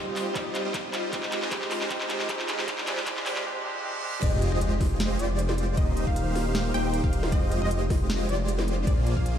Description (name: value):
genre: future bass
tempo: 155 BPM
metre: 4/4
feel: half-time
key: F dorian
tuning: A4 = 440 Hz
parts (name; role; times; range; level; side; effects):
- barky tine electric piano; accompaniment; 0.0-4.2 s; G3 to G4; -35 LUFS; right 2 dB; overdrive, sidechain pumping, ping-pong delay
- supersaw chords; riff; 0.0-9.4 s; G3 to G5; -30 LUFS; equal; sidechain pumping, ping-pong delay
- riser, reverse cymbal and sub drop; sound effects; 0.7-5.8 s; none; -38 LUFS; equal; none
- trap drum kit; drums; 0.2-9.3 s; crash cymbal, handclaps, hi-hat, snare drum; -32 LUFS; equal; overdrive, high-pass filter on snare, high-pass filter on hats, high-pass filter on cymbals, high-pass filter on room
- electronic kick drum; drums; 0.4-9.2 s; none; -26 LUFS; equal; overdrive
- wide unison pluck; arpeggios; 4.2-9.4 s; D5 to G5; -36 LUFS; right 1 dB; sidechain pumping
- wide detuned saw bass; bass; 4.2-9.4 s; Eb1 to Bb1; -28 LUFS; equal; chorus, sidechain pumping
room: light reverb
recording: played on a big sound system in a bare room, stone room reverb, high-pass filter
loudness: -24 LUFS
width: side -9 dB against mid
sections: 0.0-4.2 A section; 4.2-9.4 B section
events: build-up 0.0-4.2; drum fill 0.0-3.5; filter sweep on supersaw synth 0.0-4.2; break 3.5-4.2; reverse cymbal 3.5-4.2; drop 4.2-9.4; impact 4.2-5.8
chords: 0.0 Cm; 1.1 Fm9; 2.7 Abmaj7#11; 4.2 Fm9; 5.8 Cm7/Eb; 7.3 Fm9; 8.9 Bb9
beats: 0.36 0.74 | 1.13 1.52 1.90 2.29 | 2.68 3.06 3.45 3.84 | 4.23 4.61 5.00 5.39 | 5.78 6.16 6.55 6.94 | 7.32 7.71 8.10 8.48 | 8.87 9.26